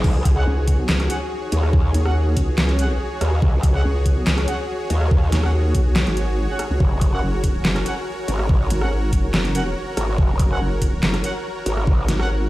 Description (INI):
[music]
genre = heavy wobble dubstep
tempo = 142 BPM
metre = 4/4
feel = half-time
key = unclear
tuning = A4 = 441 Hz
[part]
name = supersaw pad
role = sustained chords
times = 0.0-12.5 s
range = Gb4 to Db5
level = -31 LUFS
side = right 1 dB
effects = sidechain pumping
[part]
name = growl bass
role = bass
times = 0.0-12.1 s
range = Gb1 to Eb2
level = -20 LUFS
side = equal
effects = chorus, overdrive
[part]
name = dubstep drum kit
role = drums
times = 0.0-12.3 s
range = crash cymbal, handclaps, hi-hat, rim click, snare drum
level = -24 LUFS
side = equal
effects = overdrive
[part]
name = electronic kick drum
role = drums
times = 0.0-12.0 s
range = none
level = -18 LUFS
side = equal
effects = overdrive
[part]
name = ethereal airy pad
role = texture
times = 0.0-12.5 s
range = Eb4 to Bb5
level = -30 LUFS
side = left 1 dB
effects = ensemble chorus, built-in reverb, sidechain pumping
[part]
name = mellow brass ensemble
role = stabs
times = 0.4-12.3 s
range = Db4 to Gb5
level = -31 LUFS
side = right 1 dB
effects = dub echo
[part]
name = vowel-sweep wobble bass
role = bass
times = 0.5-12.5 s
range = Gb1 to Eb2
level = -20 LUFS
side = equal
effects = chorus, overdrive
[sound]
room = light reverb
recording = played on a big sound system in a bare room, stone room reverb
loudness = -17 LUFS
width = side -17 dB against mid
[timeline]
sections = 0.0-12.5 A section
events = none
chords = 0.0 Dbsus4; 6.8 Gb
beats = | 0.04 0.47 0.89 1.31 | 1.73 2.15 2.58 3.00 | 3.42 3.85 4.27 4.69 | 5.11 5.54 5.96 6.38 | 6.80 7.23 7.65 8.07 | 8.49 8.92 9.34 9.76 | 10.18 10.61 11.03 11.45 | 11.87 12.30